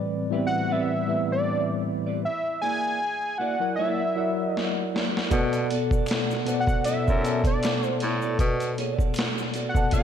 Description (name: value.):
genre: R&B, neo-soul.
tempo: 78 BPM.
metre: 4/4.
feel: swing 56% on 16ths.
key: unclear.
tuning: A4 = 440 Hz.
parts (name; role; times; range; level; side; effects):
tine electric piano; accompaniment; 0.0-10.0 s; A2 to A5; -27 LUFS; left 1 dB; medium stereo tremolo.
clean electric guitar; second line; 0.3-10.0 s; A#3 to D5; -34 LUFS; right 5 dB; lush chorus, slapback echo.
fat analog lead; melody; 0.5-10.0 s; D5 to G#5; -28 LUFS; equal; slapback echo.
boom bap sampler-style drum kit; drums; 4.6-10.0 s; hi-hat, kick drum, snare drum; -26 LUFS; equal; none.
clear baritone saxophone; bass; 5.3-10.0 s; F#2 to B2; -28 LUFS; equal; none.
tube shaker and finger snaps; percussion; 5.3-10.0 s; none; -45 LUFS; left 4 dB; none.
room: moderate lush hall reverb, RT60 2.9 s.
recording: big arena sound.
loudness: -23 LUFS.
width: side -8 dB against mid.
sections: 0.0-10.0 A section.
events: drum fill 4.5-5.3.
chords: 0.0 Am11; 2.2 F#7b13; 5.3 Bm7.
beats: 0.70 1.47 | 2.24 3.01 3.78 4.54 | 5.31 6.08 6.85 7.62 | 8.39 9.16 9.93.